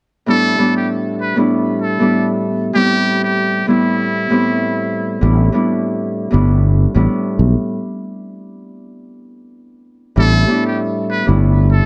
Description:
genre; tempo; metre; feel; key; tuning
hip hop, boom-bap hip-hop; 97 BPM; 4/4; swing 59% on 16ths; unclear; A4 = 436 Hz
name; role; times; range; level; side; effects
trumpet with metal mute; melody; 0.3-5.2, 10.2-11.9 s; E4 to B4; -22 LUFS; equal; high-pass filter, low-pass filter
Celtic harp; accompaniment; 0.3-11.9 s; A2 to E4; -19 LUFS; equal; cassette tape, high-pass filter, low-pass filter
sustaining fretless electric bass; bass; 5.2-11.8 s; G1 to B1; -14 LUFS; equal; none
room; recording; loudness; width
light reverb; dark, warm production; -16 LUFS; mono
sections
0.3-10.2 A section; 10.2-11.9 B section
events
stop 7.7-10.2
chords
0.3 Em7/A; 2.8 Am9; 5.2 Em7; 7.7 N.C.; 10.2 Em7

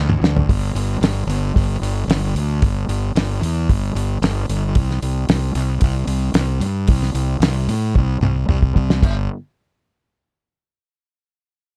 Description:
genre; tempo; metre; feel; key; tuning
indie rock; 113 BPM; 4/4; straight; unclear; A4 = 439 Hz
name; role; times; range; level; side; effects
fuzz fingered electric bass; bass; 0.0-9.3 s; G1 to A2; -21 LUFS; equal; overdrive
cloth-damped thuddy drum kit; drums; 0.1-9.1 s; crash cymbal, hi-hat, kick drum, snare drum, toms; -21 LUFS; equal; none
room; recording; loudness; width
little or no reverb; dark, warm production; -19 LUFS; mono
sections
0.5-9.0 A section; 9.0-11.1 B section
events
drum fill 0.0-0.5, 7.9-9.0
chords
none

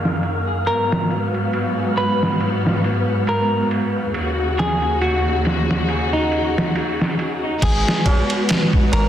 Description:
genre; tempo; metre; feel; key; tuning
trip hop; 69 BPM; 4/4; swing 56% on 16ths; G# dorian; A4 = 440 Hz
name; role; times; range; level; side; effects
semi-hollow electric guitar; melody; 0.0-9.1 s; D#4 to B4; -23 LUFS; equal; tape echo
muted studio string section; sustained chords; 0.0-9.1 s; D#2 to F#4; -21 LUFS; equal; none
wind-like tuned noise texture; texture; 0.0-7.6 s; E#5; -32 LUFS; equal; built-in reverb
trip hop sampler-style drum kit; drums; 0.1-9.1 s; crash cymbal, kick drum, ride cymbal, snare drum; -22 LUFS; equal; low-pass filter on cymbals, soft clipping on snare, low-pass filter on snare, low-pass filter on kick, low-pass filter on room
soft 808-style bass; bass; 7.6-9.1 s; G#1; -19 LUFS; equal; none
tabla; percussion; 7.6-9.1 s; none; -29 LUFS; right 3 dB; none
room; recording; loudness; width
light reverb; dense, heavily limited modern master; -17 LUFS; side -10 dB against mid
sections
0.0-7.6 A section; 7.6-9.1 B section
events
none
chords
0.0 F#6; 0.7 G#m7; 4.1 D#m7; 7.6 G#m7

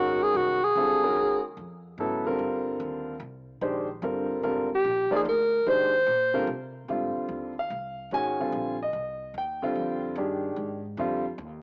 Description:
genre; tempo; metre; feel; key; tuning
modal jazz; 147 BPM; 3/4; swing 67% on 8ths; Ab lydian from 6.9 s; A4 = 437 Hz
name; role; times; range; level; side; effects
warm alto saxophone; melody; 0.0-1.4, 4.7-6.5 s; Gb4 to C5; -26 LUFS; equal; cassette tape
clear concert grand piano; accompaniment; 0.0-11.2 s; Db3 to Ab5; -31 LUFS; equal; none
upright bass; bass; 0.0-11.6 s; G1 to C3; -44 LUFS; equal; none
room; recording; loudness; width
moderate spring reverb, RT60 1.7 s; home recording on cassette, small speaker sound; -28 LUFS; mono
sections
0.0-6.9 A section; 6.9-11.6 B section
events
none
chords
0.0 Gbmaj9; 2.0 Abmaj9; 6.9 Abmaj7

